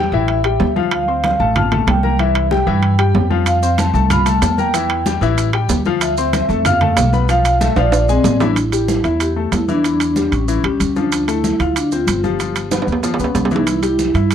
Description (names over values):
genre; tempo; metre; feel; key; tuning
latin, salsa; 188 BPM; 4/4; straight; A minor; A4 = 440 Hz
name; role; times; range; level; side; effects
vibraphone with soft mallets; melody; 0.0-14.3 s; C4 to B5; -18 LUFS; right 1 dB; none
clear upright piano; accompaniment; 0.0-14.3 s; E3 to F6; -21 LUFS; left 11 dB; none
upright bass; bass; 0.0-14.3 s; G1 to G2; -19 LUFS; right 1 dB; none
congas; percussion; 0.1-14.3 s; none; -23 LUFS; left 1 dB; none
timbales; percussion; 0.3-14.3 s; none; -22 LUFS; right 6 dB; none
maracas; percussion; 3.5-14.3 s; none; -30 LUFS; right 10 dB; none
room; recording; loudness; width
small room ambience; dry, close 1970s-style studio recording; -14 LUFS; side -9 dB against mid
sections
0.0-8.6 A section; 8.6-14.3 B section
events
drum fill 7.8-8.6, 12.7-13.7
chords
0.3 A5; 0.9 Dm7; 2.2 C; 3.5 F; 4.7 Emadd11; 5.4 A5; 6.0 Dm9; 7.3 Bbmaj7; 7.9 Bb9; 8.6 A5; 10.5 A7b13; 11.1 Dm7; 12.4 Gaug7; 13.7 C